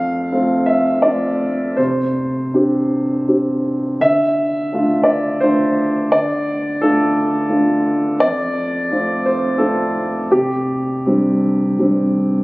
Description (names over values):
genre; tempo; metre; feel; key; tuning
neoclassical minimalist piano; 79-89 BPM; 3/4; rubato; D minor; A4 = 440 Hz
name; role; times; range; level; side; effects
dark baby grand piano; solo; 0.0-12.4 s; F2 to F5; -15 LUFS; equal; none
room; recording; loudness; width
light reverb; recorded on a phone in the room, club ambience, compression, lossy compression artefacts; -15 LUFS; side -21 dB against mid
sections
0.0-12.4 A section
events
none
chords
0.0 F; 1.8 Csus2; 4.0 Dmadd9; 8.2 F; 10.3 Csus2